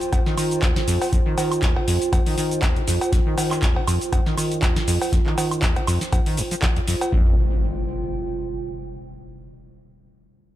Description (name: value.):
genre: acid house.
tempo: 120 BPM.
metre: 4/4.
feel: swing 55% on 16ths.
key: unclear.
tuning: A4 = 441 Hz.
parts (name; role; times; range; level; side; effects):
booming analog drum machine; drums; 0.0-7.1 s; cowbell, handclaps, hi-hat, shaker, snare drum, woodblock; -26 LUFS; equal; none.
warbly tape-like pad; texture; 0.0-9.1 s; F4 to G5; -27 LUFS; right 2 dB; chorus, built-in reverb, sidechain pumping.
acid bass, saw; riff; 0.1-7.4 s; Eb2 to F3; -25 LUFS; equal; tube saturation, lush chorus, sidechain pumping, ping-pong delay.
electronic kick drum; drums; 0.1-7.3 s; none; -21 LUFS; equal; none.
impact; sound effects; 7.1-9.1 s; none; -31 LUFS; left 1 dB; none.
room: digital ambience.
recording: none.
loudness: -19 LUFS.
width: side -13 dB against mid.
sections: 0.0-7.1 A section; 7.1-9.1 B section.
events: none.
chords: 0.0 F5.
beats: 0.13 0.63 | 1.13 1.63 2.13 2.63 | 3.13 3.63 4.13 4.63 | 5.13 5.63 6.13 6.63 | 7.13 7.63 8.13 8.63.